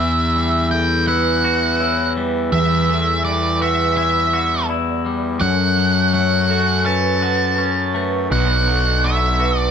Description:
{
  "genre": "rock",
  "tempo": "83 BPM",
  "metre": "4/4",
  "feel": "straight",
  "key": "E dorian",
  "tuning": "A4 = 441 Hz",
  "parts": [
    { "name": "octave-fuzz lead guitar", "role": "melody", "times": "0.0-9.7 s", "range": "D5 to A5", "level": "-19 LUFS", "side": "right 2 dB", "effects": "distortion" },
    { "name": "hand-pumped harmonium", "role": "sustained chords", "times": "0.0-9.7 s", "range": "E3 to F#4", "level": "-30 LUFS", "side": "equal", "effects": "none" },
    { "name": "twangy electric guitar", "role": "arpeggios", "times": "0.0-9.7 s", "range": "E2 to F#4", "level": "-24 LUFS", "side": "left 2 dB", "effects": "none" },
    { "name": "vibraphone with medium mallets", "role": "arpeggios", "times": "0.0-9.7 s", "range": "A4 to E5", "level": "-25 LUFS", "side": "right 3 dB", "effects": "none" },
    { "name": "fuzz picked electric bass", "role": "bass", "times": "0.0-9.7 s", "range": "B1 to F#2", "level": "-20 LUFS", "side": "left 1 dB", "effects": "overdrive" }
  ],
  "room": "moderate studio reverb, RT60 0.5 s",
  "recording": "band playing live in one room",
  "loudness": "-15 LUFS",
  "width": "side -7 dB against mid",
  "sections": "0.0-9.7 A section",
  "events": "none",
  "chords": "0.0 Emadd9; 5.4 F#m; 8.3 Bm"
}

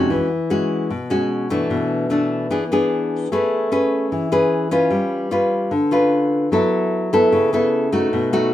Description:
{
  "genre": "bossa nova",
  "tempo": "150 BPM",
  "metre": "4/4",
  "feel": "straight",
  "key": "E major",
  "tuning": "A4 = 439 Hz",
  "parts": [
    { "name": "nylon-string guitar", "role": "accompaniment", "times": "0.0-8.5 s", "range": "B2 to B4", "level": "-17 LUFS", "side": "left 1 dB", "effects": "none" }
  ],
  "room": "moderate studio reverb, RT60 0.5 s",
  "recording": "band playing live in one room",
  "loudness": "-17 LUFS",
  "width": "side -12 dB against mid",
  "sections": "0.1-8.5 A section",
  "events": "none",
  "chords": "0.1 E69; 1.7 Bm7; 2.5 E7; 3.3 Amaj9; 4.9 G7#11; 6.5 F#m7"
}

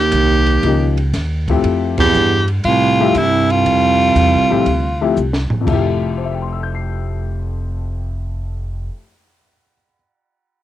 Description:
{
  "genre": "jazz, small-group swing and bop",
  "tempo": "119 BPM",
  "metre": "4/4",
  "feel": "swing 68% on 8ths",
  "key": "F major",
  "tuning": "A4 = 439 Hz",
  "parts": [
    { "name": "edgy tenor saxophone", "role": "melody", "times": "0.0-5.2 s", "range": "E4 to G4", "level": "-15 LUFS", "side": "left 2 dB", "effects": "none" },
    { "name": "clear baritone saxophone", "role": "second line", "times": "0.0-5.2 s", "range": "C2 to E2", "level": "-17 LUFS", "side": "right 7 dB", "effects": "none" },
    { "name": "upright bass", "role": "bass", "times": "0.0-8.9 s", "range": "F1 to A2", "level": "-19 LUFS", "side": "equal", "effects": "transformer saturation" },
    { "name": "compact cocktail drum kit", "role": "drums", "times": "0.1-5.8 s", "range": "crash cymbal, hi-hat, kick drum, ride cymbal, snare drum, toms", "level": "-24 LUFS", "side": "right 1 dB", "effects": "none" },
    { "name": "warm baby grand piano", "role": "accompaniment", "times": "0.6-10.0 s", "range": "F2 to C7", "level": "-20 LUFS", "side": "left 7 dB", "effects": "none" }
  ],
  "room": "light reverb",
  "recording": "home recording on cassette",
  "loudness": "-14 LUFS",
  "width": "side -12 dB against mid",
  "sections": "0.0-5.7 A section; 5.7-9.7 B section",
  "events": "band accent 1.9; drum fill 5.2-5.7",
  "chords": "0.0 Eb9; 1.6 Fmaj7"
}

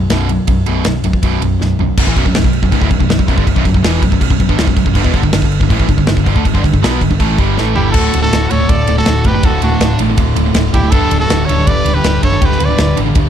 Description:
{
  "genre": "heavy metal",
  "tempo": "161 BPM",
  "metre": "4/4",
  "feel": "straight",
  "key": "B minor",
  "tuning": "A4 = 440 Hz",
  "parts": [
    { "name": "sludgy distorted guitar", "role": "riff", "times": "0.0-13.3 s", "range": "B1 to B3", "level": "-18 LUFS", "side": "left 8 dB", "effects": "overdrive" },
    { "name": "tight distorted guitar", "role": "riff", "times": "0.0-13.3 s", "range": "B1 to B3", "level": "-19 LUFS", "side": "right 12 dB", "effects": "distortion" },
    { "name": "picked electric bass", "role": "bass", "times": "0.0-13.3 s", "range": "B0 to D2", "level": "-17 LUFS", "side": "equal", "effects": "none" },
    { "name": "modern studio drum kit", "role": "drums", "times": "0.1-13.2 s", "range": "crash cymbal, kick drum, ride cymbal, snare drum, toms", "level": "-15 LUFS", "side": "equal", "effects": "none" },
    { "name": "distorted electric guitar", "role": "riff", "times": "2.0-13.3 s", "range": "B1 to B3", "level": "-21 LUFS", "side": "equal", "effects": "overdrive" },
    { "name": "brilliant trumpet", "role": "melody", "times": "7.8-13.0 s", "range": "F#4 to D5", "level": "-18 LUFS", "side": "equal", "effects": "none" },
    { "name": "high-gain lead guitar", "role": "second line", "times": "7.8-13.0 s", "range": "D4 to B4", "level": "-22 LUFS", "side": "right 3 dB", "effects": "distortion" }
  ],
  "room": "studio reverb",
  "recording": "dark, warm production",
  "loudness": "-10 LUFS",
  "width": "side -9 dB against mid",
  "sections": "0.0-2.0 A section; 2.0-7.9 B section; 7.9-13.3 C section",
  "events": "drum fill 1.6-2.0, 7.6-7.9",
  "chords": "0.0 B5; 2.0 Bm; 5.0 G5; 7.9 D; 10.9 G/D"
}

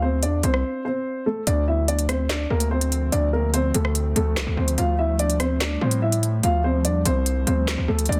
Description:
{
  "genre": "hip hop, drill",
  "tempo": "145 BPM",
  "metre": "4/4",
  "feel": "half-time",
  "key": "unclear",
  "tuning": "A4 = 441 Hz",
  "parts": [
    { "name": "dark baby grand piano", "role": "melody", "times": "0.0-8.2 s", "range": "A3 to F5", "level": "-27 LUFS", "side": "equal", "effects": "none" },
    { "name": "distorted 808-style bass", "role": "bass", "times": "0.0-8.2 s", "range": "C2 to A2", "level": "-25 LUFS", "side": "equal", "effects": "distortion" },
    { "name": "drill drum kit", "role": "drums", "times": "0.2-8.2 s", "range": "handclaps, hi-hat, rim click, snare drum", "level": "-29 LUFS", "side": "equal", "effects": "overdrive" },
    { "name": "hollow soft pad", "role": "sustained chords", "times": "1.5-8.2 s", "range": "D3 to C4", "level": "-34 LUFS", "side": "equal", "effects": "ensemble chorus" }
  ],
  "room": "little or no reverb",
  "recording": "dense, heavily limited modern master",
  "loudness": "-22 LUFS",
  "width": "mono",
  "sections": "0.0-1.5 A section; 1.5-8.2 B section",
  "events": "break 0.6-1.5",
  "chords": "0.0 F (rootless); 1.5 Dm7; 4.8 Fadd9/D"
}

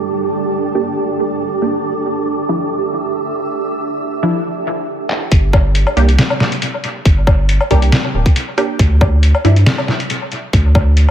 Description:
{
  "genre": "deep dubstep",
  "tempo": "138 BPM",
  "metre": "4/4",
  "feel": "swing 54% on 16ths, half-time",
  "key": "G dorian",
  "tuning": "A4 = 440 Hz",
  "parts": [
    { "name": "granular cloud pad", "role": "sustained chords", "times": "0.0-4.8 s", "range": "G3 to E5", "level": "-22 LUFS", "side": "right 2 dB", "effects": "built-in reverb" },
    { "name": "wind-like tuned noise texture", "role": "texture", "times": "0.0-4.9 s", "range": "G4", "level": "-22 LUFS", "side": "right 4 dB", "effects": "built-in reverb" },
    { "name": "filtered dub chord stab", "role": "stabs", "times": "0.8-9.6 s", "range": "F3 to G4", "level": "-21 LUFS", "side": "right 1 dB", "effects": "phaser, dub echo" },
    { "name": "trip hop sampler-style drum kit", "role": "drums", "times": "5.1-11.1 s", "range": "handclaps, hi-hat, snare drum, woodblock", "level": "-17 LUFS", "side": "left 1 dB", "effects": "low-pass filter on hats, low-pass filter on perc, low-pass filter on snare, low-pass filter on room, dub echo" },
    { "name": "saturated sub bass", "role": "bass", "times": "5.3-11.1 s", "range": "D1 to G2", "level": "-12 LUFS", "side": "equal", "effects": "none" },
    { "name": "electronic kick drum", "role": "drums", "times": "5.3-10.8 s", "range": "none", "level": "-12 LUFS", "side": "equal", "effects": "none" }
  ],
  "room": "light reverb, digital ambience",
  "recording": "echo-heavy mix",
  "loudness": "-13 LUFS",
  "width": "side -10 dB against mid",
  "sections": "0.0-5.3 A section; 5.3-11.1 B section",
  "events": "filter sweep on synth stab 0.0-5.3; filter sweep on ambient pad 0.0-5.3; drum fill 5.1; drop 5.3-11.1",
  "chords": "0.0 Gm; 1.8 Dmadd9; 5.3 Gm; 8.8 N.C."
}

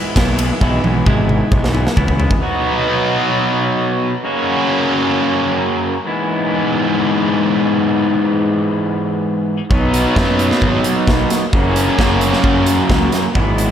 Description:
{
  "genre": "indie rock",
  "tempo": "132 BPM",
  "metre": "4/4",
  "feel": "straight",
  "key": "E lydian",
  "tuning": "A4 = 440 Hz",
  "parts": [
    { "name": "distorted electric guitar", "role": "riff", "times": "0.0-13.7 s", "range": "F#2 to F#4", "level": "-15 LUFS", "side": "equal", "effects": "distortion" },
    { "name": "fuzz picked electric bass", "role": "bass", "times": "0.2-2.3, 9.7-13.7 s", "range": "F#1 to F#2", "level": "-18 LUFS", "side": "equal", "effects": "overdrive" },
    { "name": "big rock drum kit", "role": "drums", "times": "0.2-2.4, 9.7-13.7 s", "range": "hi-hat, kick drum, ride cymbal, snare drum, toms", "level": "-17 LUFS", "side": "equal", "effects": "none" }
  ],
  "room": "moderate huge ambient reverb, RT60 6.4 s",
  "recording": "dreamy mix soaked in reverb",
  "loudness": "-13 LUFS",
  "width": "side -9 dB against mid",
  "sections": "0.0-2.4 A section; 2.4-13.7 B section",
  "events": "drum fill 0.6-2.4",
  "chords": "0.0 E; 2.4 B; 4.2 F#; 6.1 E/G#; 9.7 B; 11.5 F#"
}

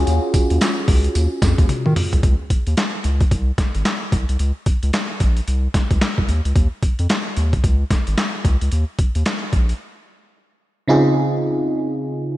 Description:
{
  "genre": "R&B, new jack swing",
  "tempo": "111 BPM",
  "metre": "4/4",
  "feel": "swing 61% on 16ths",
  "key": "unclear",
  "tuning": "A4 = 441 Hz",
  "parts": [
    { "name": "FM electric piano", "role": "accompaniment", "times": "0.0-2.3, 10.9-12.4 s", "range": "Db3 to Ab4", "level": "-19 LUFS", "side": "right 1 dB", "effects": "chorus" },
    { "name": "round analog bass", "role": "bass", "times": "0.0-9.7 s", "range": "Ab1 to Eb3", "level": "-18 LUFS", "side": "equal", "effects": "none" },
    { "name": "boom bap sampler-style drum kit", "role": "drums", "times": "0.1-9.8 s", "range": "handclaps, hi-hat, kick drum, snare drum, tambourine, toms", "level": "-18 LUFS", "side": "equal", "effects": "overdrive, vintage 12-bit sampler grit, gated reverb" }
  ],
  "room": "light reverb, digital ambience",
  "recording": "bright 1980s-style digital production",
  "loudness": "-16 LUFS",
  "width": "side -16 dB against mid",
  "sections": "0.0-2.2 A section; 2.2-10.9 B section; 10.9-12.4 A section",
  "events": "drum fill 1.7-2.2; break 9.8-10.9",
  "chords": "0.0 Ebm11; 2.2 N.C.; 6.3 Eb7(no3); 10.9 Dbmaj9"
}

